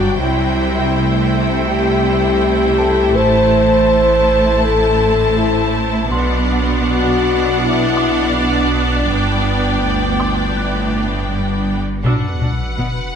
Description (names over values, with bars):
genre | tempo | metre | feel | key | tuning
cinematic, hybrid orchestral and electronic film score | 81 BPM | 4/4 | straight | B phrygian | A4 = 440 Hz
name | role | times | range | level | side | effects
clear symphonic violin section | second line | 0.0-13.2 s | B4 to A5 | -22 LUFS | left 2 dB | none
clear symphonic viola section | accompaniment | 0.0-12.9 s | F#3 to E4 | -20 LUFS | right 4 dB | none
mellow French horn section | sustained chords | 0.0-13.2 s | B3 to C5 | -18 LUFS | left 3 dB | none
rich symphonic cello section | bass | 0.0-12.9 s | D2 to C3 | -22 LUFS | right 2 dB | none
rich symphonic double bass section | bass | 0.0-12.9 s | G1 to C2 | -23 LUFS | right 1 dB | none
warm sub bass | bass | 0.0-12.0 s | G1 to C2 | -24 LUFS | equal | none
dark grand piano | texture | 0.0-13.2 s | D4 to F#6 | -30 LUFS | equal | none
rich symphonic violin section | melody | 12.0-13.2 s | F#5 | -27 LUFS | left 2 dB | none
rubbery square bass | riff | 12.0-13.0 s | B2 | -20 LUFS | left 3 dB | none
sub drop | sound effects | 12.0-13.2 s | none | -22 LUFS | equal | none
room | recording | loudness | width
moderate scoring stage reverb, RT60 1.7 s | none | -13 LUFS | side -7 dB against mid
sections
0.0-12.0 A section; 12.0-13.2 B section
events
impact 12.0-13.2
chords
0.2 C6; 3.2 Am; 6.1 Bm; 9.1 G; 12.0 Bm